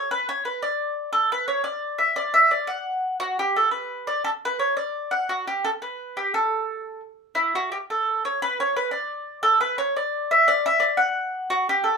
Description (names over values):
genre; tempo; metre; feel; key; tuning
celtic folk; 116 BPM (dotted quarters); 6/8; straight; unclear; A4 = 442 Hz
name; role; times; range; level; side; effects
mandolin; solo; 0.0-12.0 s; E4 to F#5; -21 LUFS; equal; none
room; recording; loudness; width
moderate studio reverb, RT60 0.5 s; minimal, uncompressed stereo recording; -21 LUFS; side -5 dB against mid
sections
0.0-7.4 A section; 7.4-12.0 A section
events
none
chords
none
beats
| 0.10 0.62 | 1.14 1.66 | 2.17 2.69 | 3.21 3.73 | 4.25 4.77 | 5.29 5.80 | 6.32 6.84 | 7.36 7.88 | 8.40 8.92 | 9.43 9.95 | 10.47 10.99 | 11.51